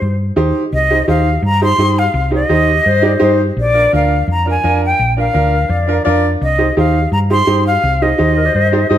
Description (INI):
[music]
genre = latin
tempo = 169 BPM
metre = 4/4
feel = straight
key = C minor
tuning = A4 = 441 Hz
[part]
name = jazz flute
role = melody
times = 0.0-9.0 s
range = C5 to C6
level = -15 LUFS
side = left 1 dB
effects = none
[part]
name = hollow-body short-scale fingered electric bass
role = bass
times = 0.0-9.0 s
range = Bb1 to G2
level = -16 LUFS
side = equal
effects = none
[part]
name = bright upright piano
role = accompaniment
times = 0.4-9.0 s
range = D4 to D5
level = -17 LUFS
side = right 3 dB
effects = none
[part]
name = breathy clarinet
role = second line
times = 2.7-9.0 s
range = G4 to Eb5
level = -19 LUFS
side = left 7 dB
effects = none
[sound]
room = moderate large studio reverb, RT60 1.4 s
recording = none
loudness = -11 LUFS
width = side -11 dB against mid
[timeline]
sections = 0.7-9.0 A section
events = none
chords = 0.0 Cm; 3.6 Bb; 6.4 Cm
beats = 0.02 0.38 | 0.73 1.09 1.44 1.80 | 2.15 2.51 2.87 3.22 | 3.58 3.93 4.29 4.64 | 5.00 5.35 5.71 6.07 | 6.42 6.78 7.13 7.49 | 7.84 8.20 8.55 8.91